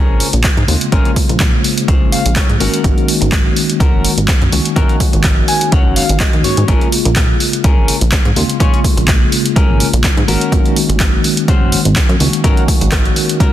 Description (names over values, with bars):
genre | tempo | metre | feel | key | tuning
filtered disco house | 125 BPM | 4/4 | swing 54% on 16ths | unclear | A4 = 440 Hz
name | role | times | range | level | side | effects
tine electric piano | accompaniment | 0.0-13.5 s | Db3 to C5 | -18 LUFS | left 1 dB | fast stereo tremolo, phaser, sidechain pumping, low-pass filter
clean electric guitar | riff | 0.0-13.5 s | Db4 to Ab5 | -21 LUFS | left 3 dB | sidechain pumping, low-pass filter
plucky analog bass | bass | 0.0-13.5 s | Gb1 to Ab2 | -16 LUFS | equal | sidechain pumping, low-pass filter
punchy analog drum machine | drums | 0.2-13.5 s | handclaps, hi-hat, rim click | -18 LUFS | equal | overdrive, sidechain pumping on hats
electronic kick drum | drums | 0.4-13.5 s | none | -13 LUFS | equal | overdrive
room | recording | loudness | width
little or no reverb | dense, heavily limited modern master | -10 LUFS | side -12 dB against mid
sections
0.0-13.5 A section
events
clean electric guitar fill 1.9-2.8, 5.2-6.7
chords
0.0 Bbm7; 2.6 Ab9sus4; 6.7 Bbm7; 10.3 Ab9sus4